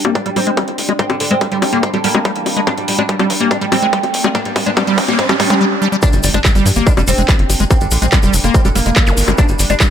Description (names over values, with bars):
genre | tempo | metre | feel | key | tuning
psychedelic trance | 143 BPM | 4/4 | straight | G phrygian | A4 = 440 Hz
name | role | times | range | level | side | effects
oud | melody | 0.0-9.8 s | D3 to D4 | -20 LUFS | right 1 dB | phaser, sidechain pumping, low-pass filter, ping-pong delay
overtone-sweeping drone | sustained chords | 0.0-9.9 s | G3 to D4 | -25 LUFS | right 1 dB | chorus, built-in reverb, sidechain pumping
liquid acid bass | riff | 0.0-9.9 s | F3 to Bb3 | -18 LUFS | moving between left 6 dB and equal | chorus, auto-pan, sidechain pumping, ping-pong delay
tight sequencer bass | bass | 0.0-9.8 s | F1 to G2 | -18 LUFS | equal | high-pass filter
drum and bass drum kit | drums | 0.0-9.9 s | bongos, handclaps, hi-hat | -19 LUFS | left 3 dB | none
riser, noise sweep, impact and zap | sound effects | 2.4-9.2 s | none | -23 LUFS | right 2 dB | none
electronic kick drum | drums | 0.2-9.9 s | none | -16 LUFS | equal | distortion, high-pass filter on kick, high-pass filter on room
tube shaker | percussion | 6.0-9.9 s | none | -24 LUFS | left 3 dB | none
room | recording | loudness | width
light reverb, digital ambience | none | -12 LUFS | side -9 dB against mid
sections
0.0-6.0 A section; 6.0-9.9 B section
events
build-up 0.0-6.0; filter sweep on acid bass 0.0-6.0; filter sweep on synth drone 0.0-6.0; riser 2.4-5.6; drum fill 2.7-5.6; noise sweep 4.3-6.0; drop 6.0-9.9; impact 6.0-7.7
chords
0.0 G5